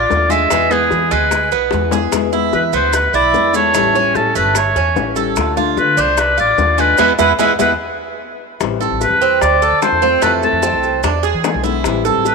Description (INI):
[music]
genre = latin, Cuban son and guajira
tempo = 148 BPM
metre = 4/4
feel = straight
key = A minor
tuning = A4 = 441 Hz
[part]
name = clear oboe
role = melody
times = 0.0-12.3 s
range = G#4 to E5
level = -16 LUFS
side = left 2 dB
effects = none
[part]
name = Cuban tres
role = arpeggios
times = 0.0-12.3 s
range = G#3 to A4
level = -17 LUFS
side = right 11 dB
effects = none
[part]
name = upright bass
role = bass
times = 0.0-12.3 s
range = G1 to E3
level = -22 LUFS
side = equal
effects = none
[part]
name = flamenco guitar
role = accompaniment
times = 0.1-12.3 s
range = B2 to F4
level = -21 LUFS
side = left 14 dB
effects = none
[part]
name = bongos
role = percussion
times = 0.1-12.3 s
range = none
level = -24 LUFS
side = left 13 dB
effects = none
[part]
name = maracas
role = percussion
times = 0.1-12.3 s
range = none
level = -28 LUFS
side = right 14 dB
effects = none
[sound]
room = moderate plate reverb, RT60 3.5 s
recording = 1960s-style stereo with parts hard left and right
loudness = -12 LUFS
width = side -4 dB against mid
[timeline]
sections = 0.0-8.6 A section; 8.6-12.3 B section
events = drum fill 1.7-2.1, 8.4; band accent 7.0-8.6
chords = 0.0 Dm; 0.5 E; 3.7 A7; 5.4 Dm; 7.0 E; 8.6 Am9; 9.4 Dm7; 10.2 Fmaj7; 11.0 E7; 11.8 Am7